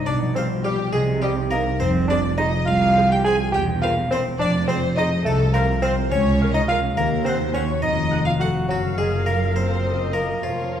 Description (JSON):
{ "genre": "cinematic, playful, whimsical film cue", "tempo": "70 BPM (dotted quarters)", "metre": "6/8", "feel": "straight", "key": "unclear", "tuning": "A4 = 440 Hz", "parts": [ { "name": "harpsichord", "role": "melody", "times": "0.0-10.8 s", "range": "F4 to Ab5", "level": "-29 LUFS", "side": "equal", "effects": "none" }, { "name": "concert harp", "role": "arpeggios", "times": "0.0-10.8 s", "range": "F2 to C6", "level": "-27 LUFS", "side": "left 6 dB", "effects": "none" }, { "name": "rich studio violin section", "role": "melody", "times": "0.1-10.8 s", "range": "F4 to Ab5", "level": "-30 LUFS", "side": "left 4 dB", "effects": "none" }, { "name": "rich studio violin section", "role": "second line", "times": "0.1-10.8 s", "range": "F4 to Ab5", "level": "-32 LUFS", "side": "left 3 dB", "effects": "none" }, { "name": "warm bassoon", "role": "accompaniment", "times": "0.1-10.8 s", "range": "F3 to Ab4", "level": "-24 LUFS", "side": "right 1 dB", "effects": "none" }, { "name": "warm studio cello section", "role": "bass", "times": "0.1-10.8 s", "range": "C2 to C3", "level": "-25 LUFS", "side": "right 2 dB", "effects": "none" }, { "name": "warm studio double bass section", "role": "bass", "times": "0.1-10.8 s", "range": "E1 to Eb2", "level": "-26 LUFS", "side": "right 3 dB", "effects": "none" }, { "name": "rich studio viola section", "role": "accompaniment", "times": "0.4-10.8 s", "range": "G4 to Gb5", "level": "-32 LUFS", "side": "right 1 dB", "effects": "none" } ], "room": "wet scoring stage reverb, RT60 1.7 s", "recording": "dark, warm production", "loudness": "-18 LUFS", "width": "side -9 dB against mid", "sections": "0.0-10.8 A section", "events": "none", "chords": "0.1 G7/B; 0.9 Cm; 1.8 Fm; 3.5 C7/E; 4.4 Fm; 5.3 F7/C; 6.1 Bbm/Db; 7.0 Cm7b5/Eb; 7.8 F7b9; 8.7 Gbmaj7", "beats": "| 0.07 0.94 | 1.81 2.67 | 3.53 4.39 | 5.25 6.11 | 6.97 7.83 | 8.69 9.56 | 10.44" }